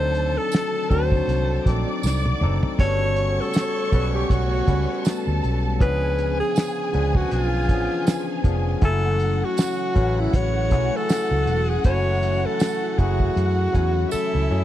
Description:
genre	lush 1970s-style soul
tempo	80 BPM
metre	4/4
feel	swing 58% on 16ths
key	F# minor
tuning	A4 = 440 Hz
part	warm alto saxophone	melody	0.0-14.6 s	E4 to C#5	-25 LUFS	equal	none
part	dark studio string section	second line	0.0-14.6 s	E4 to D6	-31 LUFS	equal	none
part	barky tine electric piano	accompaniment	0.0-14.6 s	E3 to G#5	-28 LUFS	left 3 dB	wide subtle chorus
part	phased string machine	sustained chords	0.0-14.6 s	C#3 to F#4	-34 LUFS	equal	ensemble chorus, phaser
part	vintage muted fingered electric bass	bass	0.0-14.6 s	E1 to F#2	-23 LUFS	equal	none
part	cloth-damped thuddy drum kit	drums	0.1-13.9 s	hi-hat, kick drum, snare drum, splash cymbal, toms	-20 LUFS	equal	none
part	tambourine	percussion	0.5-14.3 s	none	-37 LUFS	right 16 dB	none
room	studio reverb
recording	dry, close 1970s-style studio recording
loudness	-19 LUFS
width	side -12 dB against mid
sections	0.0-14.6 A section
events	drum fill 2.0-2.8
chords	0.0 D7b9; 2.8 Gmaj9#11; 5.8 C#7b9; 8.8 F#m9

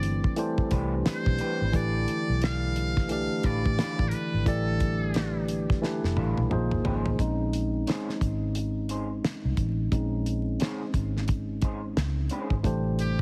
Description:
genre	R&B, neo-soul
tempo	88 BPM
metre	4/4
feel	swing 60% on 16ths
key	unclear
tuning	A4 = 442 Hz
part	trumpet with metal mute	melody	0.0-5.5, 13.0-13.2 s	G4 to F5	-37 LUFS	equal	none
part	tine electric piano	accompaniment	0.0-13.2 s	E3 to D5	-33 LUFS	equal	subtle chorus
part	mellow tonewheel organ	sustained chords	0.0-7.2, 12.7-13.2 s	C3 to D4	-41 LUFS	equal	none
part	vintage muted fingered electric bass	bass	0.0-13.2 s	F1 to A2	-31 LUFS	equal	none
part	damped 70s drum kit	drums	0.0-13.2 s	hi-hat, kick drum, snare drum, toms	-31 LUFS	equal	none
part	electric guitar through a small old amp	second line	0.4-12.5 s	A3 to C5	-41 LUFS	equal	subtle chorus
room	light reverb, studio reverb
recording	heavily compressed radio sound, multiband compression, vinyl crackle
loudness	-28 LUFS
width	mono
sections	0.0-7.2 A section; 7.2-12.6 B section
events	drum fill 5.8-7.2; tine electric piano solo 7.2-12.6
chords	0.0 Am11; 1.7 Bm7b5/A; 6.5 Bbm11; 12.6 Am11

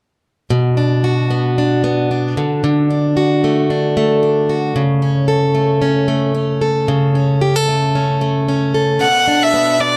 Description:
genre	pop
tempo	113 BPM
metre	4/4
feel	swing 55% on 16ths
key	unclear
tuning	A4 = 441 Hz
part	picked plugged-in steel-string acoustic guitar	accompaniment	0.5-10.0 s	B2 to A4	-16 LUFS	equal	none
part	warm violin	melody	9.0-10.0 s	D5 to F#5	-14 LUFS	equal	none
room	moderate studio reverb, RT60 0.8 s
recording	lossy compression artefacts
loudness	-15 LUFS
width	mono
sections	0.5-9.0 A section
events	none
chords	0.5 Bm; 2.4 D; 4.8 A/C#; 9.0 Bm

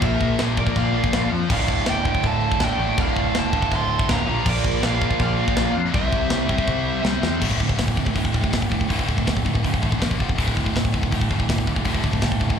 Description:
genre	heavy metal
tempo	162 BPM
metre	4/4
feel	straight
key	D minor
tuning	A4 = 438 Hz
part	high-gain lead guitar	melody	0.0-7.0 s	D5 to C6	-27 LUFS	right 3 dB	distortion, ping-pong delay
part	biting overdriven guitar	riff	0.0-12.6 s	D2 to C4	-26 LUFS	equal	slapback echo
part	distorted electric guitar	riff	0.0-12.6 s	D2 to C4	-30 LUFS	right 8 dB	distortion
part	heavy high-gain guitar	riff	0.0-12.6 s	D2 to C4	-28 LUFS	left 11 dB	distortion, slapback echo
part	growling picked electric bass	bass	0.0-12.6 s	D1 to F2	-26 LUFS	equal	overdrive
part	tight metal drum kit	drums	0.0-12.6 s	china cymbal, crash cymbal, hi-hat, kick drum, snare drum	-24 LUFS	equal	none
part	high-gain lead guitar	second line	0.1-7.0 s	Bb4 to A5	-31 LUFS	right 7 dB	distortion, slapback echo
room	small room ambience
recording	live gig heard through the venue's PA, club reverb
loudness	-19 LUFS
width	side -7 dB against mid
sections	0.0-7.4 A section; 7.4-12.6 B section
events	drum fill 6.7-7.4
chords	0.0 Bb; 1.5 Dm; 4.3 Bb; 5.9 C; 7.4 D5; 10.0 Bb5; 10.2 F5; 10.4 D5

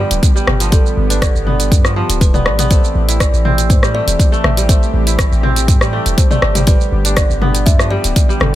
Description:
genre	afro house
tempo	121 BPM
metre	4/4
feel	straight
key	A minor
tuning	A4 = 443 Hz
part	kalimba	melody	0.0-8.6 s	A4 to E5	-23 LUFS	equal	ping-pong delay
part	warm analog pad	sustained chords	0.0-8.6 s	D3 to G4	-24 LUFS	equal	chorus, tremolo, sidechain pumping
part	kora	arpeggios	0.0-8.6 s	D3 to E4	-22 LUFS	right 2 dB	sidechain pumping, ping-pong delay
part	warm 808-style bass	bass	0.0-8.6 s	D1 to A2	-16 LUFS	equal	sidechain pumping
part	deep house drum kit	drums	0.1-8.5 s	hi-hat, rim click, shaker, toms	-18 LUFS	equal	none
part	electronic kick drum	drums	0.2-8.3 s	none	-12 LUFS	equal	none
room	digital ambience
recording	none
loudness	-11 LUFS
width	side -14 dB against mid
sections	0.0-8.6 A section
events	none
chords	0.0 G; 2.7 Am7; 6.7 G

